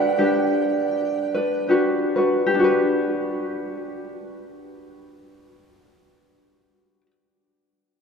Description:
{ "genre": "Hawaiian", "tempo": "71-84 BPM", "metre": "4/4", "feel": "swing 57% on 8ths", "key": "G major", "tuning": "A4 = 440 Hz", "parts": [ { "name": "metal-body resonator slide guitar", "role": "melody", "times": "0.0-1.7 s", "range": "G5", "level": "-33 LUFS", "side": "equal", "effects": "none" }, { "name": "vibraphone with soft mallets", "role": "second line", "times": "0.0-1.7 s", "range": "D5", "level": "-26 LUFS", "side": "right 10 dB", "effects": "none" }, { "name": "tenor ukulele", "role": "accompaniment", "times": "0.0-7.1 s", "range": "D4 to B4", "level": "-21 LUFS", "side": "left 2 dB", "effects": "none" } ], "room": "wet cathedral reverb, RT60 4.5 s", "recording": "recorded in a church or concert hall", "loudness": "-19 LUFS", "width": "side -6 dB against mid", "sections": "0.0-2.5 A section; 2.5-5.9 B section", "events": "slowing down 0.0-2.5", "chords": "0.0 Gmaj7" }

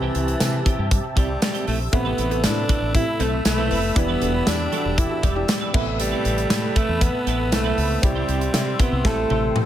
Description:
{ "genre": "1980s-style pop", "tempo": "118 BPM", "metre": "4/4", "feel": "straight", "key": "A minor", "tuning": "A4 = 440 Hz", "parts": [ { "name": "raspy alto saxophone", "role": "melody", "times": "0.0-9.6 s", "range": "E3 to E4", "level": "-26 LUFS", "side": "equal", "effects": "none" }, { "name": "warm baby grand piano", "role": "accompaniment", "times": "0.0-9.7 s", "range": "A2 to B4", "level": "-28 LUFS", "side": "right 1 dB", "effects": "none" }, { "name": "warm analog pad", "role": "sustained chords", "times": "0.0-9.7 s", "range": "G4 to E6", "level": "-30 LUFS", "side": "equal", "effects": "chorus" }, { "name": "twelve-string electric guitar", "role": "riff", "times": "0.0-9.6 s", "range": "G3 to C5", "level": "-32 LUFS", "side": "right 7 dB", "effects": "ensemble chorus" }, { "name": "mellow fretless electric bass", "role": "bass", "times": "0.0-9.5 s", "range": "E1 to C3", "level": "-25 LUFS", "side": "equal", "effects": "none" }, { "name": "modern studio drum kit", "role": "drums", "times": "0.1-9.7 s", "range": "crash cymbal, hi-hat, kick drum, snare drum, tambourine, toms", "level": "-22 LUFS", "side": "equal", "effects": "gated reverb" }, { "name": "funky polysynth comp", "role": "stabs", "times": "1.9-5.5 s", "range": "C4 to B4", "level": "-30 LUFS", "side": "left 2 dB", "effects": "chorus, digital delay" } ], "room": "small room ambience", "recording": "none", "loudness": "-19 LUFS", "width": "side -11 dB against mid", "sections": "0.0-9.7 A section", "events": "drum fill 9.0-9.7", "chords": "0.0 C; 1.9 Amadd9; 4.0 Em7; 5.7 Amadd9; 8.0 C; 9.0 Am7" }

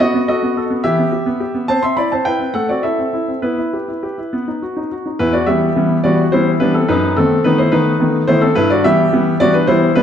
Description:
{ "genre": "classical-period piano sonatina", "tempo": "71 BPM (dotted quarters)", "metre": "6/8", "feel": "straight", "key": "E minor", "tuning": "A4 = 439 Hz", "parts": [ { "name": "clear baby grand piano", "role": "solo", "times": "0.0-10.0 s", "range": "E2 to C6", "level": "-13 LUFS", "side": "equal", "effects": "none" } ], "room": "wet recital hall reverb, RT60 1.4 s", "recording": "dark, warm production", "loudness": "-13 LUFS", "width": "side -9 dB against mid", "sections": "0.0-5.2 A section; 5.2-10.0 B section", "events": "none", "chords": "0.0 B7; 0.8 Em; 1.7 Cmaj13; 2.5 Am; 3.4 Em/B; 4.3 B; 5.2 Em; 6.9 B7/F#; 8.6 Em/G" }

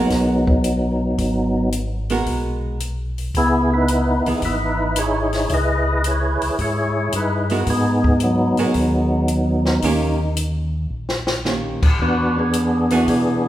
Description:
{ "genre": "soul jazz organ trio", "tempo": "111 BPM", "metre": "4/4", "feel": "swing 69% on 8ths", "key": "G# minor", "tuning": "A4 = 439 Hz", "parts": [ { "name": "percussive tonewheel organ", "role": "melody", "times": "0.0-13.5 s", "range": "F#3 to D#5", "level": "-18 LUFS", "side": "equal", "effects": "slow rotary speaker, overdrive, chorus vibrato" }, { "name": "archtop guitar, miked and amplified", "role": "accompaniment", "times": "0.0-13.5 s", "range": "D#3 to A#4", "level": "-24 LUFS", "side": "right 2 dB", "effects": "none" }, { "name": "mellow tonewheel organ", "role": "bass", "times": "0.1-13.5 s", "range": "G#1 to B2", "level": "-23 LUFS", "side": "equal", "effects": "chorus vibrato, slow rotary speaker" }, { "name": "compact cocktail drum kit", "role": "drums", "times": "0.1-13.3 s", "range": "crash cymbal, hi-hat, kick drum, snare drum", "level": "-23 LUFS", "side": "left 1 dB", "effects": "none" } ], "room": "wet recital hall reverb, RT60 1.5 s", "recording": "recorded in a church or concert hall", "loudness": "-17 LUFS", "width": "side -13 dB against mid", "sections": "0.0-13.5 A section", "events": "drum fill 10.9-11.5", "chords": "0.0 G#m9; 3.3 C#m9; 7.7 G#m9; 9.8 D#7; 12.0 E7" }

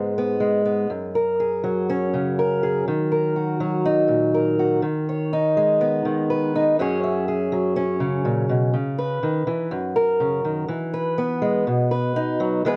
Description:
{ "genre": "folk", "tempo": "123 BPM", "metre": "4/4", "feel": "straight", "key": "unclear", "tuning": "A4 = 439 Hz", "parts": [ { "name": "fingerpicked acoustic archtop guitar", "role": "solo", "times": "0.0-12.8 s", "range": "F#2 to E5", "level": "-22 LUFS", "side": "equal", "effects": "none" } ], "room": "moderate large studio reverb, RT60 0.9 s", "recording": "worn, warbling old tape, cassette tape, warbly pitch drift", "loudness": "-22 LUFS", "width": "mono", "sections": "0.9-8.7 A section; 8.7-12.8 B section", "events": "none", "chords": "0.0 N.C.; 0.9 F#add9; 2.9 D#m; 4.8 G#m/D#; 6.8 F#sus2; 8.7 C#m; 9.7 F#; 10.7 E; 11.7 B" }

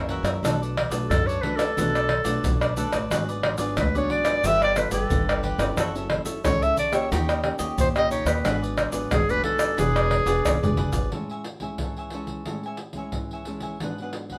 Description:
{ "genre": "samba and choro", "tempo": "90 BPM", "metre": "4/4", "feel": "straight", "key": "A major from 11.1 s", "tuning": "A4 = 441 Hz", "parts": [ { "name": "clear clarinet", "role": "melody", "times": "0.0-10.8 s", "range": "G#4 to E5", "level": "-27 LUFS", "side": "equal", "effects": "none" }, { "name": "cavaquinho", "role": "accompaniment", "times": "0.0-14.4 s", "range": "D4 to G#5", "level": "-36 LUFS", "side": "equal", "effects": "none" }, { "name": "nylon-string guitar", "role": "accompaniment", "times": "0.0-14.4 s", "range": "F#2 to A4", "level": "-34 LUFS", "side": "equal", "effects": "none" }, { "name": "upright bass", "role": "bass", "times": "0.0-11.1 s", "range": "E1 to F#2", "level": "-31 LUFS", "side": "equal", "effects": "none" }, { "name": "pandeiro, tube shaker, tamborim and surdo", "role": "percussion", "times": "0.1-14.4 s", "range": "none", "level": "-28 LUFS", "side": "equal", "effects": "none" } ], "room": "moderate studio reverb, RT60 0.6 s", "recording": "none", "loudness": "-24 LUFS", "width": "mono", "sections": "0.0-11.1 A section; 11.1-14.4 B section", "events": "drum fill 10.5-11.1", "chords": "0.4 Bm7; 3.1 G#m7b5; 4.4 G9; 5.8 F#m7; 7.1 D#7; 8.5 G#m7b5; 9.8 E7; 11.1 Amaj7; 13.8 G#m7b5" }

